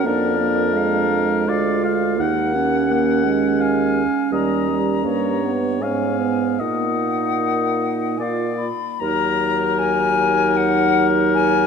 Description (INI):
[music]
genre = classical, slow romantic movement for wind quintet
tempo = 72-86 BPM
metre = 3/4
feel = rubato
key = Eb minor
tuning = A4 = 443 Hz
[part]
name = bright wooden flute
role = melody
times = 0.0-11.7 s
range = D5 to Cb6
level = -24 LUFS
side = left 8 dB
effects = none
[part]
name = warm oboe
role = second line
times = 0.0-11.7 s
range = Bb4 to Gb5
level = -24 LUFS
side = left 6 dB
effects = none
[part]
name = warm French horn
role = accompaniment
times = 0.0-11.7 s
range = Gb3 to Db4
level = -24 LUFS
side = equal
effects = none
[part]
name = warm clarinet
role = accompaniment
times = 0.0-11.7 s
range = Cb4 to F4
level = -23 LUFS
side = right 9 dB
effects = none
[part]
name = dark bassoon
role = bass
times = 0.0-11.7 s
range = D2 to Bb2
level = -23 LUFS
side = right 1 dB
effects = none
[sound]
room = moderate concert hall reverb, RT60 2.1 s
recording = none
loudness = -17 LUFS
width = side -6 dB against mid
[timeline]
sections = 0.0-9.0 A section; 9.0-11.7 B section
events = none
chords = 0.0 Bb7/F; 2.2 Ebm; 4.3 Eb7; 5.8 Abm; 6.6 Ebm/Bb; 8.2 Bb; 9.0 Ebm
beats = | 0.05 0.75 1.48 | 2.19 2.90 3.60 | 4.32 5.05 5.82 | 6.60 7.40 8.20 | 9.02 9.82 10.59 | 11.35